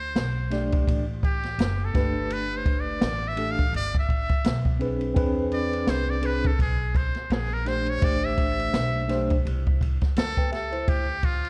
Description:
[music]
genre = hip hop, jazz-hop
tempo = 84 BPM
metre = 4/4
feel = swing 58% on 16ths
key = unclear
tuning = A4 = 443 Hz
[part]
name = trumpet with metal mute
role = melody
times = 0.0-11.5 s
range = F4 to F5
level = -33 LUFS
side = equal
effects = none
[part]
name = upright bass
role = bass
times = 0.0-11.5 s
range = F#1 to E2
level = -32 LUFS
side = equal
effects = none
[part]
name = open jazz drum kit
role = drums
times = 0.2-11.5 s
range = hi-hat, kick drum, ride cymbal, snare drum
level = -28 LUFS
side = equal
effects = none
[part]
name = mellow tine electric piano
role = accompaniment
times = 0.5-11.1 s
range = A3 to G5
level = -31 LUFS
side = equal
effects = none
[sound]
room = light reverb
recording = worn, warbling old tape, cassette tape, warbly pitch drift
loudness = -25 LUFS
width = mono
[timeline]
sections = 0.0-10.9 A section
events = muted trumpet solo 0.0-10.9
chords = 0.0 D5; 1.9 Gadd9; 4.4 Bm6; 5.2 E7b13; 7.3 Bbsus2; 8.0 Am11; 10.9 Dm7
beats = 0.16 0.88 1.59 | 2.30 3.02 3.73 4.45 | 5.16 5.88 6.59 7.30 | 8.02 8.73 9.45 10.16 | 10.88

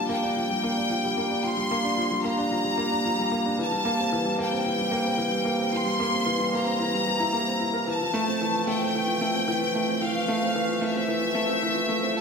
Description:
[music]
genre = piano and strings electronica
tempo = 112 BPM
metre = 4/4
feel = straight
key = unclear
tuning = A4 = 440 Hz
[part]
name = bright studio violin section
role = melody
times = 0.0-12.2 s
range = E5 to C6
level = -26 LUFS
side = left 2 dB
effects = none
[part]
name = warm upright piano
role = riff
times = 0.0-12.2 s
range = E3 to Bb4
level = -26 LUFS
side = right 1 dB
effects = none
[sound]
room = wet scoring stage reverb, RT60 1.6 s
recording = high-pass filter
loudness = -23 LUFS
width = side -5 dB against mid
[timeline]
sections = 0.0-12.2 A section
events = build-up 0.0-12.2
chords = 0.0 Gm7; 3.6 C7; 7.9 Fmaj7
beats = 0.38 0.91 | 1.45 1.98 2.52 3.05 | 3.59 4.12 4.66 5.20 | 5.73 6.27 6.80 7.34 | 7.88 8.41 8.95 9.48 | 10.02 10.55 11.09 11.62 | 12.16

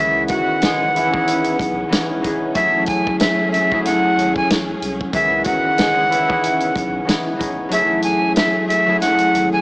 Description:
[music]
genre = hip hop, boom-bap hip-hop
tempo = 93 BPM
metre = 4/4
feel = swing 60% on 16ths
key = C# minor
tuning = A4 = 438 Hz
[part]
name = breathy bright jazz flute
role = melody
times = 0.0-9.6 s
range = E5 to G#5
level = -18 LUFS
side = equal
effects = high-pass filter, low-pass filter
[part]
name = concert harp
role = accompaniment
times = 0.0-9.6 s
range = D#3 to G#4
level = -21 LUFS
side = left 1 dB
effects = high-pass filter, low-pass filter
[part]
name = warm studio string section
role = sustained chords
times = 0.0-9.6 s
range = C#3 to G#4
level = -27 LUFS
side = equal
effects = high-pass filter, low-pass filter
[part]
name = warm sub bass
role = bass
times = 0.0-9.6 s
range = E#1 to C#2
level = -34 LUFS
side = equal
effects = none
[part]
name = warm horn section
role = stabs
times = 0.3-1.6, 5.4-6.7 s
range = E3 to G#4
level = -25 LUFS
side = equal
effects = high-pass filter, low-pass filter, tape echo
[part]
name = vintage drum kit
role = drums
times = 0.3-9.5 s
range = hi-hat, kick drum, snare drum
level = -22 LUFS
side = equal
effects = none
[sound]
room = light reverb, small room ambience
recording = small speaker sound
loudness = -15 LUFS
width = side -26 dB against mid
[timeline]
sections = 0.0-9.6 A section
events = kick muted 7.7-9.6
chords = 0.0 C#m7; 2.6 F#m9; 5.1 C#m7; 7.7 F#m9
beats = 0.62 1.26 1.91 | 2.55 3.20 3.84 4.49 | 5.13 5.78 6.42 7.07 | 7.71 8.36 9.00

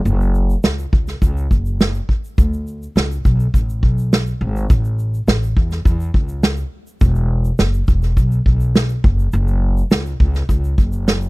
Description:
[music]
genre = acoustic pop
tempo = 104 BPM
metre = 4/4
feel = straight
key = F# minor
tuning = A4 = 440 Hz
[part]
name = upright bass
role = bass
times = 0.1-11.3 s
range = E1 to E2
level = -18 LUFS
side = equal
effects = none
[part]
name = unplugged drum kit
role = drums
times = 0.1-11.3 s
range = kick drum, shaker, snare drum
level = -15 LUFS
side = equal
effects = none
[sound]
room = little or no reverb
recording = dry, close 1970s-style studio recording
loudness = -15 LUFS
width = side -22 dB against mid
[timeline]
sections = 0.0-11.3 A section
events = none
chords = none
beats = | 0.06 0.64 1.22 1.80 | 2.38 2.96 3.54 4.12 | 4.70 5.28 5.86 6.43 | 7.01 7.59 8.17 8.75 | 9.33 9.91 10.49 11.07

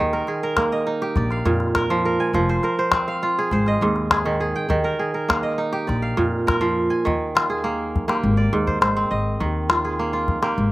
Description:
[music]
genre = west african traditional, West African string and xylophone music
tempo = 102 BPM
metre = 4/4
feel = straight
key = unclear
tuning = A4 = 439 Hz
[part]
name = kora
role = arpeggios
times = 0.0-10.7 s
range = Ab2 to Ab5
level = -21 LUFS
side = right 2 dB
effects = none
[part]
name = upright bass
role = bass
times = 0.0-10.7 s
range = F1 to F2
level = -24 LUFS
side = left 1 dB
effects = none
[part]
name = calabash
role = percussion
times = 0.1-10.6 s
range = none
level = -23 LUFS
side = left 2 dB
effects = none
[sound]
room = little or no reverb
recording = recorded outdoors, with no room sound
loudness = -19 LUFS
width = side -18 dB against mid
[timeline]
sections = 0.0-7.0 A section; 7.0-10.7 B section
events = none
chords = 0.0 Eb; 1.2 Bb; 2.3 Fm; 3.5 Ab; 4.7 Eb; 5.9 Bb; 7.0 Eb; 8.2 Ab; 9.4 Eb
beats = 0.57 1.16 1.75 | 2.34 2.93 3.52 4.11 | 4.70 5.29 5.87 6.46 | 7.05 7.64 8.22 8.81 | 9.40 9.99 10.58

